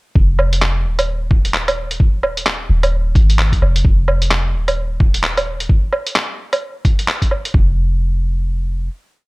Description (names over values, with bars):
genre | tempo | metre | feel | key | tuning
future garage | 130 BPM | 4/4 | swing 60% on 16ths | F minor | A4 = 440 Hz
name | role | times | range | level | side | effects
soft 808-style bass | bass | 0.2-8.9 s | Eb1 to Ab1 | -17 LUFS | equal | sidechain pumping
electronic kick drum | drums | 0.2-7.7 s | none | -13 LUFS | equal | none
lo-fi sampler-style drum kit | drums | 0.4-7.5 s | handclaps, hi-hat, woodblock | -18 LUFS | right 1 dB | none
room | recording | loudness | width
little or no reverb | dry, gritty hardware recording | -14 LUFS | side -24 dB against mid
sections
0.2-7.5 groove; 7.5-9.3 final note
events
none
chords
none